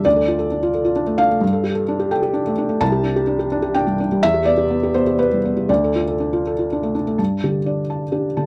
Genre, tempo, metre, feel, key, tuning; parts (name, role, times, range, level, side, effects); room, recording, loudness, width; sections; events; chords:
neoclassical minimalist piano; 116-134 BPM; 3/4; rubato; A4 = 440 Hz
felt-muted upright piano; solo; 0.0-8.5 s; C2 to A5; -19 LUFS; equal
light reverb; close, detailed microphones; -19 LUFS; mono
0.0-7.2 A section; 7.2-8.5 B section
0.1 Dm; 1.4 Gsus2; 2.8 Csus2; 4.2 Em7; 5.7 Dm; 7.2 Gsus2